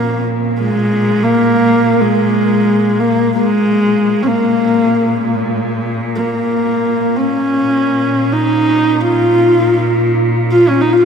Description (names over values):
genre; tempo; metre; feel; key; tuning
mongolian traditional, Mongolian folk; free time; none; none; Bb yu mode; A4 = 441 Hz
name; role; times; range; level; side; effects
warm horsehead fiddle; melody; 0.0-11.1 s; Ab3 to F4; -12 LUFS; equal; none
rich cello; drone; 0.0-11.1 s; Bb2; -20 LUFS; right 1 dB; none
room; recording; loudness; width
wet cathedral reverb, RT60 7.3 s; in a vast, echoing space; -11 LUFS; side -6 dB against mid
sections
0.0-11.1 A section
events
none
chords
none